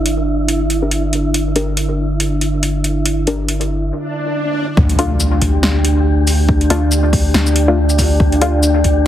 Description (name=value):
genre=deep dubstep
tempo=140 BPM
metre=4/4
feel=swing 57% on 16ths, half-time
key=unclear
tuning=A4 = 443 Hz
part: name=deep dark ambient pad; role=sustained chords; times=0.0-9.1 s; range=D4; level=-19 LUFS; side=right 1 dB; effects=chorus, built-in reverb
part: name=soft dub sub bass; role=bass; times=0.0-9.1 s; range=G1 to D2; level=-16 LUFS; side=equal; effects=none
part: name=wind-like tuned noise texture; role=texture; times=0.0-9.1 s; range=E4 to G4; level=-25 LUFS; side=equal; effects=built-in reverb
part: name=deep house drum kit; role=drums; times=0.1-8.9 s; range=hi-hat, shaker, snare drum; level=-19 LUFS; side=equal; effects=overdrive, studio ambience
part: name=filtered dub chord stab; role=stabs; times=0.8-8.5 s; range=A3 to Bb4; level=-22 LUFS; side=left 3 dB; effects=chorus, dub echo
part: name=swell and impact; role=sound effects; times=4.1-6.5 s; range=none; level=-21 LUFS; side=equal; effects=none
part: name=electronic kick drum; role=drums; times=4.8-8.9 s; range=none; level=-16 LUFS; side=equal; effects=overdrive, studio ambience
room=light reverb, digital ambience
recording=heavily compressed radio sound, multiband compression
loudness=-13 LUFS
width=side -11 dB against mid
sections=0.0-4.8 A section; 4.8-9.1 B section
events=filter sweep on ambient pad 0.0-4.8; break 3.9-4.8; swell 4.1-4.8; drop 4.8-9.1; impact 4.8-6.5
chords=0.0 Gm; 4.8 Dm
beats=0.06 0.49 0.92 | 1.34 1.77 2.20 2.63 | 3.06 3.49 3.92 4.34 | 4.77 5.20 5.63 6.06 | 6.49 6.92 7.34 7.77 | 8.20 8.63 9.06